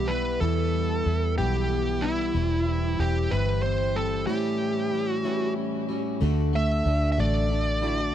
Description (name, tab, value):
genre	pop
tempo	62 BPM (dotted quarters)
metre	6/8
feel	straight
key	unclear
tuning	A4 = 441 Hz
part	bluesy overdriven lead guitar	melody	0.0-8.1 s	E4 to E5	-28 LUFS	right 2 dB	distortion, tape echo
part	clean electric guitar	accompaniment	0.0-8.1 s	E2 to F#4	-30 LUFS	equal	double-tracked left and right
part	picked plugged-in steel-string acoustic guitar	arpeggios	0.0-8.1 s	E2 to F#4	-34 LUFS	left 3 dB	none
part	vintage muted fingered electric bass	bass	0.0-8.1 s	E1 to E2	-26 LUFS	equal	none
room	little or no reverb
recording	dry, close 1970s-style studio recording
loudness	-23 LUFS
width	side -10 dB against mid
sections	0.0-6.2 A section; 6.2-8.1 B section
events	break 4.3-6.2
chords	0.0 Em; 2.4 C/E; 4.3 A7; 6.2 D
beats	| 0.41 1.38 | 2.35 3.32 | 4.29 5.25 | 6.22 7.19